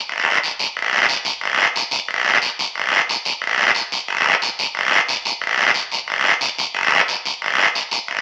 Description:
latin; 180 BPM; 4/4; straight
guiro; percussion; 0.1-8.2 s; -18 LUFS; equal
wet studio reverb, RT60 0.7 s; very old 78 rpm record, vinyl crackle; -18 LUFS; mono
0.0-6.1 A section; 6.1-8.2 A section

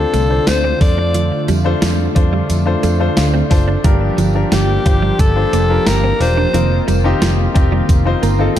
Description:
1980s-style pop; 89 BPM; 4/4; straight; A4 = 438 Hz
raspy alto saxophone; melody; 0.0-6.9 s; G4 to D5; -19 LUFS; left 3 dB; ping-pong delay
clear baby grand piano; accompaniment; 0.0-8.6 s; G2 to Bb5; -20 LUFS; left 4 dB
brassy analog pad; sustained chords; 0.0-8.6 s; D3 to G4; -22 LUFS; right 2 dB; chorus
vintage muted fingered electric bass; bass; 0.0-8.6 s; E1 to F2; -16 LUFS; equal
direct-recorded clean electric guitar; riff; 0.1-8.3 s; F3 to D4; -24 LUFS; right 5 dB; ensemble chorus, ping-pong delay
clean 12-bit digital drum machine; drums; 0.1-8.6 s; hi-hat, kick drum, snare drum; -16 LUFS; equal; overdrive
tambourine; percussion; 0.1-8.6 s; -36 LUFS; right 6 dB
light reverb; dark, warm production; -12 LUFS; side -11 dB against mid
0.0-8.6 A section
grand piano fill 2.8-3.8, 7.9-8.6
0.0 Dm7; 0.8 F6; 3.8 Gm7; 6.5 F7sus4

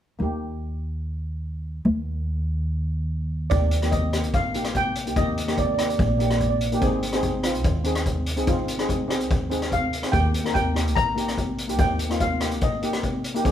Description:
calypso; 145 BPM; 4/4; straight; Eb major; A4 = 439 Hz
steel pan; accompaniment; 0.2-13.5 s; Bb3 to Bb4; -27 LUFS; left 1 dB
upright bass; bass; 0.2-13.5 s; Ab1 to Eb2; -26 LUFS; equal
steel pan; melody; 3.5-6.6, 9.7-13.2 s; D5 to Bb5; -26 LUFS; right 1 dB
street-band drum kit; drums; 3.5-13.5 s; hi-hat, kick drum, rim click; -25 LUFS; left 1 dB
moderate stone room reverb, RT60 1.0 s; band playing live in one room; -22 LUFS; side -10 dB against mid
0.2-3.5 A section; 3.5-13.5 B section
0.2 Eb; 3.5 Ebmaj7; 6.8 Ab6; 10.1 Eb

